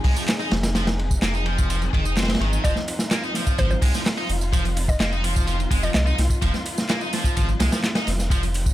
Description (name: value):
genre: breakbeat, breaks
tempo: 127 BPM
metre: 4/4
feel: straight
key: F minor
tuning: A4 = 438 Hz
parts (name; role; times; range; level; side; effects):
- dark studio string section; sustained chords; 0.0-8.7 s; F3 to Ab4; -33 LUFS; left 1 dB; sidechain pumping
- heavy high-gain guitar; riff; 0.0-8.4 s; Eb3 to Eb4; -28 LUFS; equal; distortion
- saturated sub bass; bass; 0.0-8.7 s; F1 to C2; -24 LUFS; equal; tube saturation
- crunchy breakbeat drum kit; drums; 0.0-8.7 s; hi-hat, kick drum, ride cymbal, snare drum; -23 LUFS; equal; none
- garage drum kit; drums; 0.2-8.7 s; handclaps, hi-hat, tambourine; -32 LUFS; right 2 dB; overdrive
- mallet-like synth pluck; melody; 2.6-6.0 s; C5 to Eb5; -31 LUFS; equal; chorus, small speaker sound, ping-pong delay
room: little or no reverb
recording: none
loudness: -20 LUFS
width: side -14 dB against mid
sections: 0.0-8.7 A section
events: none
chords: 0.0 Fm7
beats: 0.28 | 0.75 1.22 1.70 2.17 | 2.64 3.11 3.58 4.06 | 4.53 5.00 5.47 5.95 | 6.42 6.89 7.36 7.84 | 8.31